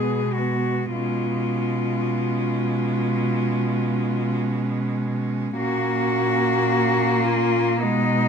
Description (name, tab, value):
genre	classical, lyrical piece for cello ensemble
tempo	52 BPM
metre	4/4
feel	rubato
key	F# major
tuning	A4 = 441 Hz
part	clear cello	melody	0.0-8.3 s	D#4 to G#4	-24 LUFS	left 5 dB	none
part	rich cello	second line	0.0-8.3 s	B3 to C#4	-29 LUFS	right 8 dB	none
part	rich cello	accompaniment	0.0-8.3 s	G#3 to A#3	-26 LUFS	left 2 dB	none
part	rich cello	bass	0.0-8.3 s	A#2 to B2	-25 LUFS	right 3 dB	none
room	moderate recital hall reverb, RT60 1.7 s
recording	close, detailed microphones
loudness	-20 LUFS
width	side -6 dB against mid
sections	0.0-8.3 A section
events	none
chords	0.0 G#m/B; 5.6 F#/A#